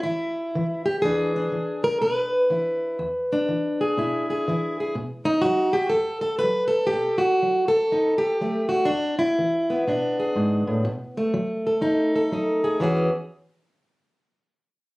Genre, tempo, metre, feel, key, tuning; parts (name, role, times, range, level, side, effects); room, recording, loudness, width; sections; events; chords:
acoustic country blues, solo or duo; 122 BPM; 4/4; swing 64% on 8ths; E mixolydian; A4 = 445 Hz
fingerpicked plugged-in steel-string acoustic guitar; solo; 0.0-13.1 s; E2 to B4; -21 LUFS; equal
light reverb; recorded on a phone in the room, studio ambience, compression; -21 LUFS; side -21 dB against mid
0.0-12.8 A section; 12.8-14.7 B section
0.0 N.C.; 1.0 E7; 5.0 B7; 8.9 E7; 10.8 B7; 12.8 E69